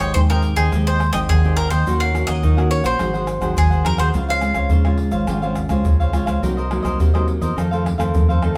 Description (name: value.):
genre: samba and choro.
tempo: 105 BPM.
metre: 4/4.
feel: straight.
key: unclear.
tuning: A4 = 439 Hz.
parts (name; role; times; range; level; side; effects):
bowl-back mandolin; melody; 0.0-6.4 s; Ab4 to F5; -25 LUFS; equal; none.
cavaquinho; accompaniment; 0.0-8.6 s; Eb4 to G5; -29 LUFS; equal; none.
nylon-string guitar; accompaniment; 0.0-8.6 s; F2 to G4; -27 LUFS; equal; none.
fingered electric bass with an envelope filter; bass; 0.0-8.5 s; Ab1 to Eb3; -24 LUFS; equal; none.
egg shaker, surdo, pandeiro and tamborim; percussion; 0.0-8.6 s; none; -22 LUFS; equal; none.
room: moderate stone room reverb, RT60 1.0 s.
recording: band playing live in one room.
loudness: -18 LUFS.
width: mono.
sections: 0.0-8.6 A section.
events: none.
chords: 0.0 Abmaj7; 1.9 Ebm7; 3.0 Ab7; 4.1 Dbmaj7; 6.4 Cm7b5; 7.6 F7.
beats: 0.15 0.72 1.29 | 1.87 2.44 3.01 3.58 | 4.15 4.72 5.29 5.86 | 6.43 7.00 7.57 8.14.